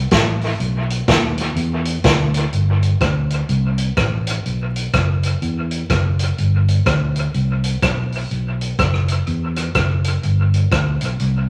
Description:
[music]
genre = ska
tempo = 124 BPM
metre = 4/4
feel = swing 62% on 8ths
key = G major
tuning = A4 = 440 Hz
[part]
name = fingered electric bass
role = bass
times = 0.0-11.5 s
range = F#1 to E2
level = -20 LUFS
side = equal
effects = none
[part]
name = vintage drum kit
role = drums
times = 0.1-11.3 s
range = hi-hat, kick drum, rim click, snare drum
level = -22 LUFS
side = equal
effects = dub echo
[sound]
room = moderate large studio reverb, RT60 1.4 s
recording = vinyl crackle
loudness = -18 LUFS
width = mono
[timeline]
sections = 0.0-2.5 A section; 2.5-11.5 B section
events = none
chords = none

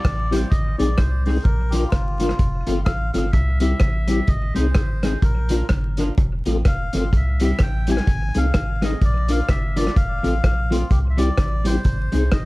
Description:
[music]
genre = ska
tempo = 127 BPM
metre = 4/4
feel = swing 59% on 8ths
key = unclear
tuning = A4 = 439 Hz
[part]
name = melodica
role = melody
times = 0.0-12.4 s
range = F4 to Ab5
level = -29 LUFS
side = left 1 dB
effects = analog delay
[part]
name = vintage drum kit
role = drums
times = 0.0-12.4 s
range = hi-hat, kick drum, rim click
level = -21 LUFS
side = equal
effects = none
[part]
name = soft dub sub bass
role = bass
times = 0.1-12.5 s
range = F1 to C2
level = -22 LUFS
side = equal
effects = none
[part]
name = semi-hollow electric guitar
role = accompaniment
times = 0.3-12.2 s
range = F3 to Ab4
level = -26 LUFS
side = right 1 dB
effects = analog chorus
[part]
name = mellow tonewheel organ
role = stabs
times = 0.3-12.4 s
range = C4 to Bb4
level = -24 LUFS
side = left 3 dB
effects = chorus vibrato, fast rotary speaker
[sound]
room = little or no reverb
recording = dark, warm production, vinyl crackle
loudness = -18 LUFS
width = side -20 dB against mid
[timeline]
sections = 0.0-12.5 A section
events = none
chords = 0.0 C; 0.5 Ab; 1.5 Bb; 2.4 F; 3.3 C; 4.3 Ab; 5.2 Bb; 6.2 F; 7.1 C; 8.1 Ab; 9.0 Bb; 10.0 F; 10.9 C; 11.8 Ab

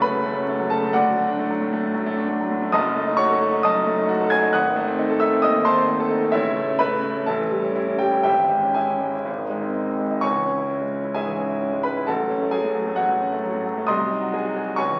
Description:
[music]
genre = classical, virtuoso piano study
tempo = 132 BPM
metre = 4/4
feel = rubato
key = C# minor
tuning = A4 = 440 Hz
[part]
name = clear grand piano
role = solo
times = 0.0-15.0 s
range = F#1 to G#6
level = -22 LUFS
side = equal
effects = none
[sound]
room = wet recital hall reverb, RT60 1.4 s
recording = very old 78 rpm record, vinyl crackle, nothing above 10.6 kHz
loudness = -22 LUFS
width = mono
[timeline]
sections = 0.0-10.2 A section; 10.2-15.0 B section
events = none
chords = 0.0 F#m; 0.9 D; 2.7 D#dim/F#; 4.5 G#7b9; 6.3 A; 7.3 A7; 8.2 C#m/G#; 9.2 G#; 10.2 C#m; 12.1 F#m/A; 13.9 G#7/B#

